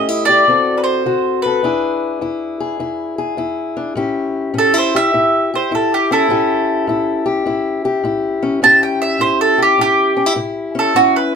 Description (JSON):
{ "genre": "acoustic country blues, solo or duo", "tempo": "103 BPM", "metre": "4/4", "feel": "swing 66% on 8ths", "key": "A mixolydian", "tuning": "A4 = 440 Hz", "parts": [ { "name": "mandolin", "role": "melody", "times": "0.0-11.3 s", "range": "E4 to A5", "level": "-13 LUFS", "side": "right 2 dB", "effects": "none" }, { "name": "fingerpicked acoustic archtop guitar", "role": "accompaniment", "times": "0.0-11.4 s", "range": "E2 to A4", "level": "-18 LUFS", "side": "left 3 dB", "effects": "none" } ], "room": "moderate studio reverb, RT60 0.6 s", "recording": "none", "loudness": "-13 LUFS", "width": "side -6 dB against mid", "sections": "0.0-4.0 A section; 4.0-11.4 B section", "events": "mandolin solo 4.0-11.4", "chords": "0.5 D7; 1.6 E7; 4.0 A7" }